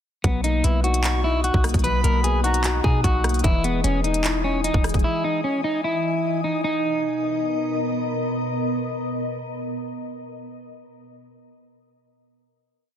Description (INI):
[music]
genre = hip hop, trap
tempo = 150 BPM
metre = 4/4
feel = half-time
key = B major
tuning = A4 = 440 Hz
[part]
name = electric guitar at the edge of break-up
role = melody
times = 0.2-7.8 s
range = B3 to B4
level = -24 LUFS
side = equal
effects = low-pass filter
[part]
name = dark concert grand piano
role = accompaniment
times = 0.2-5.8 s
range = E3 to F#4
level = -29 LUFS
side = left 6 dB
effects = low-pass filter
[part]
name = glassy FM pad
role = sustained chords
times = 0.8-10.5 s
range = B2 to D#6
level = -28 LUFS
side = left 1 dB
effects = ensemble chorus, built-in reverb
[part]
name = clean 808-style bass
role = bass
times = 0.2-5.0 s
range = E1 to B2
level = -23 LUFS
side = equal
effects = none
[part]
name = trap drum kit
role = drums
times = 0.2-5.0 s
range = handclaps, hi-hat, kick drum, rim click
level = -23 LUFS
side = equal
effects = none
[part]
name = jazz flute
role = second line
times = 1.0-3.0 s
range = A#5 to C#6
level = -31 LUFS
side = right 1 dB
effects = ping-pong delay
[sound]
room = light reverb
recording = dense, heavily limited modern master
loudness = -20 LUFS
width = side -9 dB against mid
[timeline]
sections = 0.2-6.6 hook; 6.6-9.8 final chord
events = none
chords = 0.2 Bmaj7; 3.4 Emaj7; 6.6 Bmaj7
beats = | 0.24 0.64 1.04 1.44 | 1.84 2.24 2.64 3.04 | 3.44 3.84 4.24 4.64 | 5.04 5.44 5.84 6.24 | 6.64 7.04 7.44 7.84 | 8.24 8.64 9.04 9.44